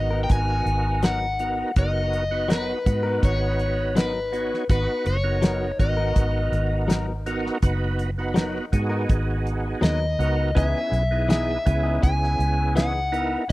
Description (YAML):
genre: straight-eighth soul blues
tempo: 82 BPM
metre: 4/4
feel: straight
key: G# minor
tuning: A4 = 440 Hz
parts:
  - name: overdriven semi-hollow guitar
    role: melody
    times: 0.0-13.5 s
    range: B4 to G#5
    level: -26 LUFS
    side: left 2 dB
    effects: none
  - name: overdriven tonewheel organ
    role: accompaniment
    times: 0.0-13.5 s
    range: B3 to C#5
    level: -28 LUFS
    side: right 3 dB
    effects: slow rotary speaker, chorus vibrato
  - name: vintage muted fingered electric bass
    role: bass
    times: 0.0-13.5 s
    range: F#1 to G#2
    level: -25 LUFS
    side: equal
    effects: none
  - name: direct-recorded clean electric guitar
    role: stabs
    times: 0.1-13.0 s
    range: E3 to A#4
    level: -30 LUFS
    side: left 3 dB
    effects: spring reverb
  - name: damped 70s drum kit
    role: drums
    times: 0.3-13.5 s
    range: hi-hat, kick drum, snare drum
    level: -20 LUFS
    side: equal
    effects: none
room: studio reverb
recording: dry, close 1970s-style studio recording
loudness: -20 LUFS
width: side -18 dB against mid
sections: 0.0-13.5 A section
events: none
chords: 0.0 G#m9; 10.6 C#m9